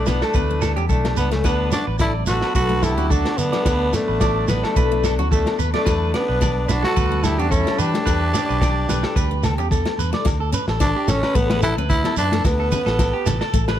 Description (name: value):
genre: highlife guitar band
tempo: 109 BPM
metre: 4/4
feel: swing 54% on 16ths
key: D major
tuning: A4 = 440 Hz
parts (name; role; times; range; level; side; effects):
- growling tenor saxophone; melody; 0.0-13.5 s; A3 to F#4; -23 LUFS; equal; none
- warm trumpet; second line; 0.0-9.7 s; C#4 to A4; -31 LUFS; left 4 dB; none
- picked steel-string acoustic guitar; accompaniment; 0.0-13.8 s; A3 to D4; -30 LUFS; left 8 dB; none
- warbly tape-like pad; sustained chords; 0.0-10.2 s; E3 to E4; -33 LUFS; equal; none
- electric guitar at the edge of break-up; arpeggios; 0.0-13.8 s; F#4 to D5; -26 LUFS; right 2 dB; phaser, slapback echo
- fingered electric bass; bass; 0.0-13.8 s; A1 to E3; -23 LUFS; equal; none
- crunchy breakbeat drum kit; drums; 0.1-13.8 s; kick drum, snare drum; -23 LUFS; equal; none
- congas; percussion; 0.1-13.6 s; none; -28 LUFS; left 2 dB; none
- shekere; percussion; 0.1-13.7 s; none; -29 LUFS; right 4 dB; none
- agogo bells; percussion; 0.2-13.5 s; none; -35 LUFS; left 11 dB; none
room: light reverb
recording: none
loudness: -17 LUFS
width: side -11 dB against mid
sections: 0.0-10.3 A section; 10.3-13.8 B section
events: none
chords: 0.0 Em7; 1.5 D6; 5.9 Em7; 10.3 D5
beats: 0.35 0.90 | 1.46 2.01 2.56 3.11 | 3.66 4.21 4.76 5.31 | 5.87 6.42 6.97 7.52 | 8.07 8.62 9.17 9.71 | 10.26 10.81 11.36 11.90 | 12.45 12.99 13.54